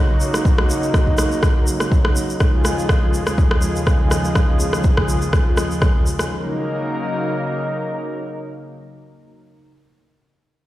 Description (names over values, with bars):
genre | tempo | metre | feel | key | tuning
afro house | 123 BPM | 4/4 | swing 54% on 16ths | Eb minor | A4 = 440 Hz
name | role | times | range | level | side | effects
warm analog pad | sustained chords | 0.0-9.3 s | Eb2 to Bb4 | -22 LUFS | equal | lush chorus, sidechain pumping
egg shaker | percussion | 0.2-6.3 s | none | -31 LUFS | right 1 dB | none
electronic rim click | drums | 0.3-6.3 s | none | -24 LUFS | equal | none
electronic kick drum | drums | 0.5-5.9 s | none | -16 LUFS | equal | overdrive
room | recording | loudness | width
moderate lush hall reverb, RT60 1.8 s, studio ambience | played on a big sound system in a bare room, stone room reverb | -16 LUFS | side -15 dB against mid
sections
0.0-6.3 A section; 6.3-10.2 B section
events
none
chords
0.0 Ebm7; 2.4 Db/Eb; 6.3 Ebm7